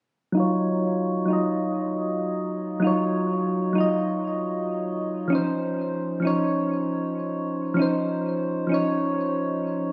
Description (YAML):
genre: chillout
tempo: 97 BPM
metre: 4/4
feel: swing 56% on 16ths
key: Eb dorian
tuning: A4 = 440 Hz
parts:
  - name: soft electric-piano-like synth keys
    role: accompaniment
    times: 0.3-9.9 s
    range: F3 to Eb5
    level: -25 LUFS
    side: equal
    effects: chorus, low-pass filter, tape echo
room: moderate lush hall reverb, RT60 2.1 s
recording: recorded on a phone in the room, club reverb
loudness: -25 LUFS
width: mono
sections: 0.4-9.9 A section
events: filter sweep on synth keys 0.4-9.9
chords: 0.4 Ebm9; 5.3 Dbmaj9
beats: | 0.36 0.98 1.60 2.22 | 2.83 3.45 4.07 4.69 | 5.31 5.93 6.54 7.16 | 7.78 8.40 9.02 9.64